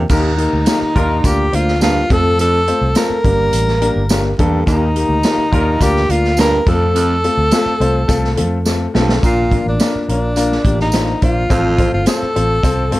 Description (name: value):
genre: uptempo 1960s-style soul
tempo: 105 BPM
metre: 4/4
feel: straight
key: Bb major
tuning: A4 = 440 Hz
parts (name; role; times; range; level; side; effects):
- warm baritone saxophone; riff; 0.0-11.9 s; Eb2 to Bb2; -20 LUFS; right 3 dB; none
- vintage muted fingered electric bass; bass; 0.0-13.0 s; G1 to A2; -18 LUFS; equal; none
- breathy tenor saxophone; melody; 0.1-13.0 s; D4 to Bb4; -18 LUFS; equal; none
- warm concert grand piano; accompaniment; 0.1-13.0 s; G2 to C5; -19 LUFS; left 3 dB; none
- vintage drum kit; drums; 0.1-13.0 s; crash cymbal, hi-hat, kick drum, snare drum; -18 LUFS; equal; none
- tambourine; percussion; 0.1-12.8 s; none; -28 LUFS; right 4 dB; none
- warm horn section; second line; 0.9-1.4, 5.5-5.9 s; D4 to Bb4; -24 LUFS; equal; none
room: light reverb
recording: dark, warm production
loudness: -12 LUFS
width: side -17 dB against mid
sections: 0.1-9.2 A section; 9.2-13.0 B section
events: drum fill 8.7-9.2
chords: 0.1 Eb; 1.2 Bb/D; 2.1 F; 3.2 Gm; 4.7 Eb; 5.8 Bb/D; 6.7 F; 9.2 Bb; 11.5 F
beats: | 0.10 0.67 1.24 1.81 | 2.38 2.96 3.53 4.10 | 4.67 5.24 5.81 6.38 | 6.95 7.52 8.09 8.66 | 9.23 9.80 10.37 10.94 | 11.50 12.07 12.64